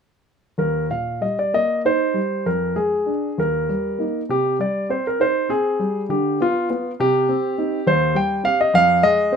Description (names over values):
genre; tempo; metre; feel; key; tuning
classical, baroque-style suite movement for grand piano; 62-70 BPM (dotted quarters); 6/8; rubato; Eb major; A4 = 441 Hz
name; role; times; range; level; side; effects
warm grand piano; solo; 0.6-9.4 s; Eb2 to G5; -18 LUFS; equal; none
room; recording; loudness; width
moderate stone room reverb, RT60 1.0 s; none; -18 LUFS; side -6 dB against mid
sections
0.6-9.4 A section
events
none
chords
0.6 Eb; 2.5 Ddim/F; 3.4 Eb; 4.3 Cm; 6.1 Bdim/D; 7.0 Cm; 7.9 Cm/Eb; 8.7 Fm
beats
| 0.58 1.53 | 2.46 3.37 | 4.30 5.20 | 6.09 6.98 | 7.85 8.72